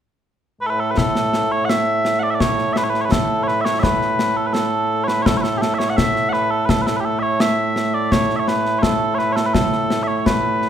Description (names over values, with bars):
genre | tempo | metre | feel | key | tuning
scottish traditional, Scottish pipe music | 84 BPM | 4/4 | straight | A major | A4 = 440 Hz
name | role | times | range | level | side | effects
mellow small bagpipes | melody | 0.6-10.7 s | A2 to F#5 | -18 LUFS | right 1 dB | none
concert snare drum and concert bass drum | drums | 1.0-10.7 s | none | -21 LUFS | left 2 dB | none
room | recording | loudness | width
moderate scoring stage reverb, RT60 2.0 s | minimal, uncompressed stereo recording | -16 LUFS | side -9 dB against mid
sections
1.0-10.7 A section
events
none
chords
none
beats
0.26 | 0.97 1.69 2.40 3.12 | 3.83 4.55 5.26 5.97 | 6.69 7.40 8.12 8.83 | 9.55 10.26